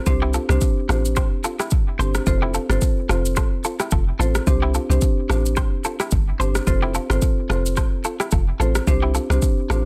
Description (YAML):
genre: afrobeats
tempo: 109 BPM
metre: 4/4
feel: swing 55% on 16ths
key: F major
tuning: A4 = 440 Hz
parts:
  - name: marimba with medium mallets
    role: accompaniment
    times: 0.1-9.9 s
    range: C4 to C5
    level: -29 LUFS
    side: equal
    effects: none
  - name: deep log drum bass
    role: bass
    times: 0.1-9.9 s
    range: F1 to C2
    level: -23 LUFS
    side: equal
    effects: none
  - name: afro-pop drum kit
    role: drums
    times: 0.1-9.8 s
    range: kick drum, rim click, shaker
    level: -24 LUFS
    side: equal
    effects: soft clipping on snare
  - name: electric guitar at the edge of break-up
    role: riff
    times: 0.2-9.8 s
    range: E4 to C5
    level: -30 LUFS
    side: equal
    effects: digital delay
room: little or no reverb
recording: dense, heavily limited modern master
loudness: -20 LUFS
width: mono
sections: 0.0-9.9 A section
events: none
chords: 0.1 Csus2; 2.3 F; 4.5 Csus2; 6.7 F; 8.9 Csus2